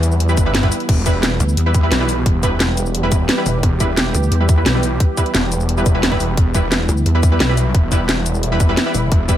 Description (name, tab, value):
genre	dark technical drum and bass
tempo	175 BPM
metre	4/4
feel	straight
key	E minor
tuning	A4 = 440 Hz
part	sweeping resonant pad	sustained chords	0.0-9.4 s	E3 to G4	-24 LUFS	right 1 dB	chorus, sidechain pumping
part	snarling distorted saw bass	bass	0.0-9.4 s	E1 to E2	-19 LUFS	equal	distortion
part	drum and bass drum kit	drums	0.0-9.4 s	crash cymbal, hi-hat, shaker, snare drum	-20 LUFS	equal	none
part	orchestra-hit-like synth stab	stabs	0.3-9.4 s	G3 to B4	-22 LUFS	right 1 dB	built-in reverb, digital delay
part	electronic kick drum	drums	0.4-9.4 s	none	-15 LUFS	equal	overdrive
part	pulsing pluck wobble bass	bass	1.4-4.6, 6.9-9.1 s	E1 to E2	-16 LUFS	equal	chorus
room	little or no reverb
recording	none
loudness	-14 LUFS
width	side -11 dB against mid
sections	0.0-9.4 A section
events	none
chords	0.0 Em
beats	0.20 0.55 | 0.89 1.23 1.57 1.92 | 2.26 2.60 2.95 3.29 | 3.63 3.98 4.32 4.66 | 5.00 5.35 5.69 6.03 | 6.38 6.72 7.06 7.40 | 7.75 8.09 8.43 8.78 | 9.12